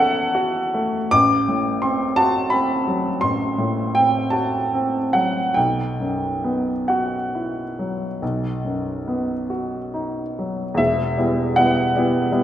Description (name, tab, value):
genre	classical, romantic nocturne for solo piano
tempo	44-60 BPM (dotted quarters)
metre	12/8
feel	rubato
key	E minor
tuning	A4 = 445 Hz
part	warm baby grand piano	solo	0.0-12.4 s	E1 to D6	-18 LUFS	equal	none
room	wet recital hall reverb, RT60 1.5 s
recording	recorded in a church or concert hall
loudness	-19 LUFS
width	side -11 dB against mid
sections	0.0-10.8 A section; 10.8-12.4 B section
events	none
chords	0.0 F#m7/E; 1.1 F#dim/A; 5.6 Bsus4; 8.2 B; 10.8 Em